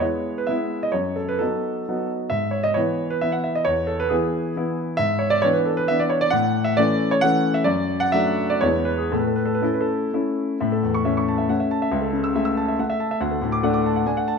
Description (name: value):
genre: classical, romantic triple-time dance for piano with dotted rhythms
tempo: 113-151 BPM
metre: 3/4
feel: rubato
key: E major, A major from 5.0 s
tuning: A4 = 440 Hz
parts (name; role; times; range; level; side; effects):
- clear grand piano; solo; 0.0-14.4 s; C#2 to E6; -20 LUFS; equal; none
room: moderate recital hall reverb, RT60 1.3 s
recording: none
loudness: -19 LUFS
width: side -5 dB against mid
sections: 0.0-10.6 A section; 10.6-14.4 B section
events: none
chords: 0.0 E; 0.9 B7/F#; 2.3 E/G#; 3.7 E; 5.0 E7/G#; 6.3 A; 7.7 D/F#; 8.6 E; 9.1 A; 11.9 A/C#; 13.2 D